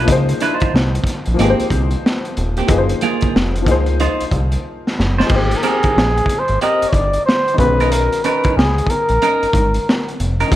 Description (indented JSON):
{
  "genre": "R&B, neo-soul",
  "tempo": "92 BPM",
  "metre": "4/4",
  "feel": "swing 63% on 16ths",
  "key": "unclear",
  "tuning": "A4 = 440 Hz",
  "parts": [
    { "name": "clean electric guitar", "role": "second line", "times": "0.0-10.5 s", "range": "Bb3 to C5", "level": "-21 LUFS", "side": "right 4 dB", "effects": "none" },
    { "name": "warm upright piano", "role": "accompaniment", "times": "0.0-10.6 s", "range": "Eb3 to C5", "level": "-22 LUFS", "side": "left 4 dB", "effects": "none" },
    { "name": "fat analog bass", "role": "bass", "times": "0.0-10.6 s", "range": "Eb1 to Db2", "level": "-18 LUFS", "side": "equal", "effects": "none" },
    { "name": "crunchy breakbeat drum kit", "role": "drums", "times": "0.1-10.6 s", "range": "crash cymbal, hi-hat, kick drum, snare drum", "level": "-19 LUFS", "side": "equal", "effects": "none" },
    { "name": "trumpet with bucket mute", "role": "melody", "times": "5.3-10.6 s", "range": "G4 to Eb5", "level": "-17 LUFS", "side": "equal", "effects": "slapback echo" }
  ],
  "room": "light reverb",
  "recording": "none",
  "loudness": "-14 LUFS",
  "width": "side -14 dB against mid",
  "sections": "0.0-5.3 A section; 5.3-10.6 B section",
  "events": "drum fill 4.6-5.3",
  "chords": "0.1 Dbmaj9; 1.4 Abmaj9; 2.7 Gbmaj9; 3.7 Dbmaj9; 5.3 Abmaj9; 7.6 Cbmaj9"
}